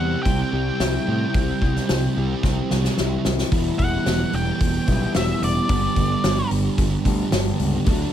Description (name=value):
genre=indie rock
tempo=110 BPM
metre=4/4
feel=straight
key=G major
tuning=A4 = 440 Hz
part: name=octave-fuzz lead guitar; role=melody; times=0.0-6.5 s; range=D5 to G5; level=-28 LUFS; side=equal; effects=distortion, plate reverb
part: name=electric guitar through a small old amp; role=riff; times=0.0-8.1 s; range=G2 to E4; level=-28 LUFS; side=left 10 dB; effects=none
part: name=thick fuzz guitar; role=riff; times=0.0-8.1 s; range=G2 to E4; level=-25 LUFS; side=right 5 dB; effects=distortion, analog chorus, digital delay
part: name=growling fingered electric bass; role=bass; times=0.0-8.0 s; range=E1 to A2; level=-24 LUFS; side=equal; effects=overdrive
part: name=loose indie drum kit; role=drums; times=0.3-8.0 s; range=hi-hat, kick drum, snare drum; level=-23 LUFS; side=equal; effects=none
room=light reverb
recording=none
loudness=-19 LUFS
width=side -10 dB against mid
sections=0.0-3.5 A section; 3.5-8.1 B section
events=drum fill 2.4-3.5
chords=0.0 C; 3.5 Em; 5.7 G